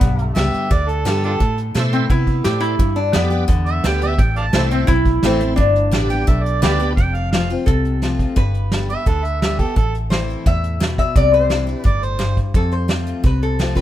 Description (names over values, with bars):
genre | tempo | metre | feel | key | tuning
honky-tonk and classic country | 172 BPM | 4/4 | straight | unclear | A4 = 440 Hz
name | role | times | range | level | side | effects
lap resonator guitar | melody | 0.0-13.8 s | B3 to E5 | -21 LUFS | left 2 dB | none
picked steel-string acoustic guitar | accompaniment | 0.0-13.8 s | E2 to G4 | -23 LUFS | left 3 dB | none
vintage muted fingered electric bass | bass | 0.0-13.8 s | F1 to C3 | -20 LUFS | equal | none
vintage brush drum kit | drums | 0.0-13.8 s | hi-hat, kick drum, snare drum | -19 LUFS | equal | none
overdriven harmonica | second line | 0.4-1.6, 3.7-12.4 s | D4 to A5 | -24 LUFS | right 4 dB | none
bright tonewheel organ | accompaniment | 1.8-6.9 s | D4 to E5 | -29 LUFS | right 5 dB | overdrive, chorus vibrato, slow rotary speaker
room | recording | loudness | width
little or no reverb | minimal, uncompressed stereo recording | -15 LUFS | side -12 dB against mid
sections
0.0-7.0 A section; 7.0-13.8 B section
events
none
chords
0.0 G; 1.4 Am; 2.8 G; 4.2 Am; 5.6 G; 7.0 F; 8.4 G; 9.8 Am; 11.2 Cadd9; 12.5 F